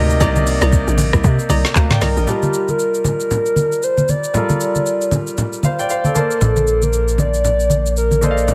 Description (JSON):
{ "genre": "amapiano", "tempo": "116 BPM", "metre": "4/4", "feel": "swing 58% on 16ths", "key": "G minor", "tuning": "A4 = 436 Hz", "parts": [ { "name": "clear concert grand piano", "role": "accompaniment", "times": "0.0-8.5 s", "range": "C3 to Bb5", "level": "-24 LUFS", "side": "equal", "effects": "none" }, { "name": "hollow square pluck", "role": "stabs", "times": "0.0-2.2 s", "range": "D5 to Bb5", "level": "-27 LUFS", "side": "equal", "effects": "chorus, delay" }, { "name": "hollow log drum bass", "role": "bass", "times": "0.0-2.3 s", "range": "Bb1 to C3", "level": "-19 LUFS", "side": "equal", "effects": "none" }, { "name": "smooth R&B drum kit", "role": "drums", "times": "0.1-8.5 s", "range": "handclaps, hi-hat, kick drum, rim click, shaker, snare drum, toms", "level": "-23 LUFS", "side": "equal", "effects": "none" }, { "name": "congas", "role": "percussion", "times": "0.2-8.5 s", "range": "none", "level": "-22 LUFS", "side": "equal", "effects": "none" }, { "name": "hollow clarinet-like synth lead", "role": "melody", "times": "2.0-8.5 s", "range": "G4 to D5", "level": "-21 LUFS", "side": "equal", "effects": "chorus, phaser, delay" }, { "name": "plucky analog bass", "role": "bass", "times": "6.4-8.5 s", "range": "Bb1", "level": "-20 LUFS", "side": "equal", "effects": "none" } ], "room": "light reverb", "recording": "heavily compressed radio sound", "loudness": "-16 LUFS", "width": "mono", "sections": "0.0-2.3 A section; 2.3-8.5 B section", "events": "drop 0.0-2.3", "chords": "0.0 Cm9; 2.3 Gm9; 6.2 Bbmaj9" }